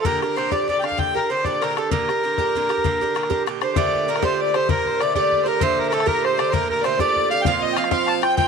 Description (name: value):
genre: celtic folk, Celtic slide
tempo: 130 BPM (dotted quarters)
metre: 12/8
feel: straight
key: G minor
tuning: A4 = 440 Hz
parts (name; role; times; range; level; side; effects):
- accordion; melody; 0.0-8.5 s; A4 to A5; -22 LUFS; equal; none
- Irish bouzouki; accompaniment; 0.0-8.5 s; Bb2 to G4; -25 LUFS; right 12 dB; none
- bodhran; percussion; 0.0-8.5 s; none; -25 LUFS; left 6 dB; none
- clear fiddle; second line; 0.1-8.5 s; A4 to G5; -26 LUFS; left 12 dB; none
- dark violin; second line; 3.6-8.5 s; A4 to A5; -28 LUFS; right 6 dB; none
room: wet spring reverb, RT60 1.9 s, small room ambience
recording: 1960s-style stereo with parts hard left and right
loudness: -18 LUFS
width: side -6 dB against mid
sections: 0.0-3.8 A section; 3.8-8.5 B section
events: none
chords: 0.0 Gm; 3.8 Gmadd9; 7.5 Bbsus2